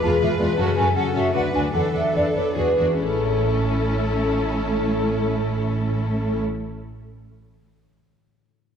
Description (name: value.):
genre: cinematic, playful, whimsical film cue.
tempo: 135-162 BPM.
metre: 3/4.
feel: straight.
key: A major.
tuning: A4 = 440 Hz.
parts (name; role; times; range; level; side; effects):
rich studio violin section; melody; 0.0-6.4 s; G#4 to B4; -33 LUFS; left 1 dB; none.
mellow hollow flute section; second line; 0.0-6.4 s; A4 to A5; -25 LUFS; equal; none.
rich studio violin section; second line; 0.0-6.4 s; E4 to A4; -30 LUFS; left 3 dB; none.
rich studio viola section; accompaniment; 0.0-6.4 s; G#3 to D4; -29 LUFS; equal; none.
concert harp; arpeggios; 0.0-7.2 s; E2 to B5; -27 LUFS; left 6 dB; none.
rich studio double bass section; bass; 0.0-6.4 s; A1 to F#2; -26 LUFS; right 2 dB; none.
warm studio cello section; bass; 0.0-6.4 s; A2 to B4; -28 LUFS; right 1 dB; none.
room: wet scoring stage reverb, RT60 2.0 s.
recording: dark, warm production.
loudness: -19 LUFS.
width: side -7 dB against mid.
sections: 0.0-3.0 A section; 3.0-5.7 B section.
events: slowing down 0.0-3.0.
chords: 0.0 E; 0.6 F#m; 1.3 Bm/D; 1.7 E7sus4; 2.6 E9; 3.0 A.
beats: 0.20 | 0.57 0.95 1.34 | 1.73 2.14 2.56 | 3.00 3.44 3.88 | 4.33 4.77 5.21.